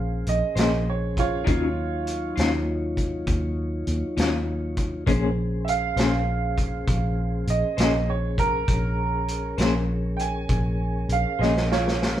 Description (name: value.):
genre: slow blues.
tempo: 66 BPM (dotted quarters).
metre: 12/8.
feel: straight.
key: Bb minor.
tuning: A4 = 440 Hz.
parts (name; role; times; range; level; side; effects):
bright upright piano; second line; 0.0-12.2 s; F4 to Ab5; -27 LUFS; right 6 dB; none.
mellow tonewheel organ; sustained chords; 0.0-12.2 s; Gb3 to Db5; -32 LUFS; left 2 dB; slow rotary speaker.
vintage muted fingered electric bass; bass; 0.0-12.2 s; Bb1 to Eb2; -26 LUFS; equal; none.
vintage drum kit; drums; 0.3-12.2 s; hi-hat, kick drum, snare drum; -26 LUFS; equal; none.
electric guitar through a small old amp; accompaniment; 0.6-11.6 s; Eb3 to C5; -26 LUFS; left 4 dB; tremolo.
room: light reverb.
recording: band playing live in one room.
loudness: -22 LUFS.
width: side -11 dB against mid.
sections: 0.0-12.2 A section.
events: upright piano solo 0.0-12.2; drum fill 11.4-12.2.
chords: 0.0 Bbm9; 1.5 Ebm9; 5.1 Bbm9.